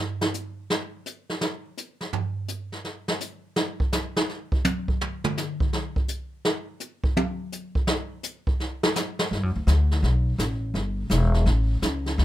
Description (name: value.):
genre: jazz, small-group swing and bop.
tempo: 167 BPM.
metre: 4/4.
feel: swing 66% on 8ths.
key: unclear.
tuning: A4 = 440 Hz.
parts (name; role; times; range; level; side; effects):
jazz brush drum kit; drums; 0.2-12.2 s; brushed snare drum, hi-hat, kick drum, snare drum, toms; -25 LUFS; right 1 dB; none.
upright bass; bass; 9.3-12.2 s; E1 to G2; -21 LUFS; equal; none.
room: light reverb.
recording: none.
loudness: -24 LUFS.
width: side -14 dB against mid.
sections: 0.0-9.3 A section; 9.3-12.2 B section.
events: drum solo 0.0-9.3.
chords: none.